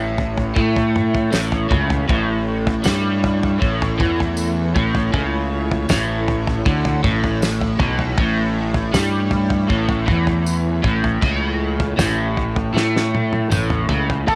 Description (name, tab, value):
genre	psychedelic rock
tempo	79 BPM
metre	4/4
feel	straight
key	A mixolydian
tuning	A4 = 444 Hz
part	string machine, full ensemble	sustained chords	0.0-14.4 s	A3 to E5	-28 LUFS	equal	ensemble chorus
part	crunchy overdriven guitar	riff	0.0-14.4 s	A2 to A4	-24 LUFS	equal	flanger
part	fuzz fingered electric bass	bass	0.0-14.4 s	A1 to A2	-24 LUFS	equal	overdrive
part	damped 70s drum kit	drums	0.2-14.4 s	kick drum, snare drum, toms	-24 LUFS	equal	none
part	tambourine	percussion	1.3-14.4 s	none	-35 LUFS	equal	none
part	octave-fuzz lead guitar	melody	14.3-14.4 s	A4	-18 LUFS	equal	distortion
room	light reverb, studio ambience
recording	none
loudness	-19 LUFS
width	mono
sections	0.0-14.3 A section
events	drum fill 12.7-14.3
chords	0.0 A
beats	0.55 1.32 | 2.08 2.85 3.61 4.37 | 5.13 5.89 6.65 7.41 | 8.17 8.93 9.69 10.45 | 11.21 11.98 12.74 13.51 | 14.27